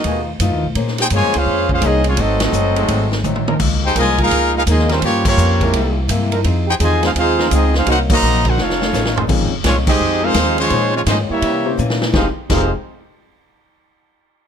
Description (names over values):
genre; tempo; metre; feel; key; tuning
jazz, big band swing; 169 BPM; 4/4; swing 64% on 8ths; F minor; A4 = 440 Hz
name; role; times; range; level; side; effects
bright trumpet section; melody; 0.0-12.7 s; Ab3 to Bb5; -18 LUFS; left 1 dB; none
mellow trombone section; second line; 0.0-12.7 s; F2 to G4; -22 LUFS; right 4 dB; none
picked steel-string acoustic guitar; accompaniment; 0.0-12.7 s; F2 to C5; -24 LUFS; left 6 dB; none
upright bass; bass; 0.0-12.7 s; F1 to C3; -19 LUFS; equal; none
swinging big-band drum kit; drums; 0.0-12.6 s; crash cymbal, hi-hat, kick drum, ride cymbal, snare drum, toms; -21 LUFS; equal; none
warm trombone section; sustained chords; 0.1-9.2 s; Bb2 to C5; -24 LUFS; right 1 dB; none
warm baby grand piano; accompaniment; 9.3-12.7 s; F3 to C5; -24 LUFS; left 6 dB; none
room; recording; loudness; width
little or no reverb; none; -13 LUFS; side -8 dB against mid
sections
0.0-9.3 A section; 9.3-12.1 B section; 12.1-13.6 C section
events
band accent 2.4, 5.2, 8.0, 9.8; drum fill 3.2-3.6, 8.6-9.3, 11.8-12.1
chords
0.1 B7#11; 0.8 Bbm9; 2.2 Ab7b9; 3.6 Db69; 5.0 Gm7b5; 5.7 C7b13; 6.4 Fm7; 7.9 Cm7b5; 8.6 F7alt; 9.3 Bbm11; 10.0 Fm9; 10.7 Bbm11; 11.4 C7b9; 12.1 Fm9